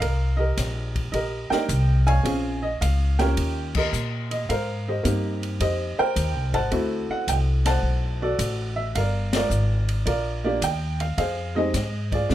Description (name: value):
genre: jazz piano trio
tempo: 108 BPM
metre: 4/4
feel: swing 68% on 8ths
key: unclear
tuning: A4 = 439 Hz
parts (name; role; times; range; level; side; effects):
- warm upright piano; melody; 0.0-12.3 s; Ab3 to A5; -26 LUFS; right 1 dB; none
- upright bass; bass; 0.0-12.3 s; G1 to Bb2; -24 LUFS; equal; none
- open jazz drum kit; drums; 0.0-12.3 s; crash cymbal, hi-hat, kick drum, ride cymbal, snare drum; -32 LUFS; left 1 dB; none
room: light reverb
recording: none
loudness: -22 LUFS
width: side -13 dB against mid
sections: 0.0-12.3 A section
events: band accent 3.7, 9.2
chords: 0.0 Cm7; 2.3 Bbm7; 3.4 Eb7; 4.5 Abmaj9; 6.7 D7; 9.0 Gm7; 11.2 Fm7